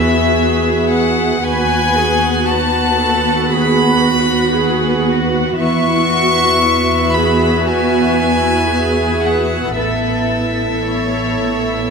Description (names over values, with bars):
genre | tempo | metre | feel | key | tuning
cinematic, emotional film score for orchestra | 58 BPM | 4/4 | rubato | E major | A4 = 441 Hz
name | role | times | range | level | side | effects
rich chamber violin section | melody | 0.0-11.9 s | E5 to C#6 | -18 LUFS | left 2 dB | none
warm studio violin section | second line | 0.0-11.9 s | B4 to F#5 | -20 LUFS | left 2 dB | none
dark symphonic viola section | accompaniment | 0.0-11.9 s | B3 to F#4 | -18 LUFS | right 1 dB | none
dark symphonic double bass section | bass | 0.0-11.9 s | A1 to E2 | -20 LUFS | right 2 dB | none
warm symphonic cello section | bass | 0.0-11.9 s | E4 to B4 | -20 LUFS | right 2 dB | none
room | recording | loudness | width
moderate concert hall reverb, RT60 2.0 s | none | -12 LUFS | side -5 dB against mid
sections
0.0-11.9 A section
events
none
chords
0.0 Eadd9; 1.4 B/D#; 5.6 Eadd9; 9.8 Asus2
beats
0.41 | 1.44 2.48 3.52 4.56 | 5.59 6.62 7.65 8.70 | 9.77 10.86